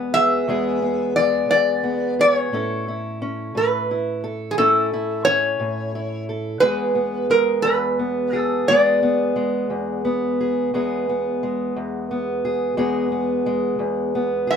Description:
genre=acoustic country blues, solo or duo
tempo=58 BPM (dotted quarters)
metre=12/8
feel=straight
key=E mixolydian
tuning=A4 = 440 Hz
part: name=metal-body resonator slide guitar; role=melody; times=0.0-14.6 s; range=G#4 to E5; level=-19 LUFS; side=equal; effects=none
part: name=fingerpicked steel-string acoustic guitar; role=accompaniment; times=0.0-14.6 s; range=E2 to A4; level=-22 LUFS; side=equal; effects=none
room=light reverb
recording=close, detailed microphones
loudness=-18 LUFS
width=side -7 dB against mid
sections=0.0-14.6 A section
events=none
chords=0.0 E; 2.5 A; 6.6 E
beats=0.46 1.48 | 2.51 3.53 4.56 5.59 | 6.61 7.64 8.67 9.69 | 10.72 11.75 12.78 13.81

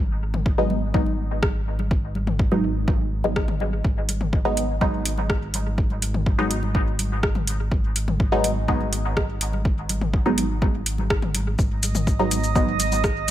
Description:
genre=dub techno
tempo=124 BPM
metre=4/4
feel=straight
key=G# minor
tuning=A4 = 440 Hz
part: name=round analog bass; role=bass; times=0.0-13.3 s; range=G#1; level=-26 LUFS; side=equal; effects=sidechain pumping
part: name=electronic toms and congas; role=percussion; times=0.3-13.3 s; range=none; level=-33 LUFS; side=left 3 dB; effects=sidechain pumping on perc, studio reverb, sidechain pumping on toms, dub echo
part: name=electronic kick drum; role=drums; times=0.5-13.1 s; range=none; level=-23 LUFS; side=equal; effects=overdrive, studio reverb
part: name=filtered dub chord stab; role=stabs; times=0.6-12.9 s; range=F#3 to D#4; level=-26 LUFS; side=equal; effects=chorus, phaser, sidechain pumping, dub echo
part: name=deep house drum kit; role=drums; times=1.4-13.3 s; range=hi-hat, rim click, shaker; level=-27 LUFS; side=equal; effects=overdrive, studio reverb, dub echo
part: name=drifting glass-harmonics texture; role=texture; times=11.9-13.3 s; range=D#5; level=-27 LUFS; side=right 9 dB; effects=chorus, built-in reverb, sidechain pumping
room=light reverb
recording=none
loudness=-20 LUFS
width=side -12 dB against mid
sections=0.0-13.3 A section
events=none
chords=0.0 G#m7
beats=0.46 0.94 1.43 | 1.91 2.39 2.88 3.36 | 3.85 4.33 4.81 5.30 | 5.78 6.26 6.75 7.23 | 7.72 8.20 8.68 9.17 | 9.65 10.14 10.62 11.10 | 11.59 12.07 12.55 13.04

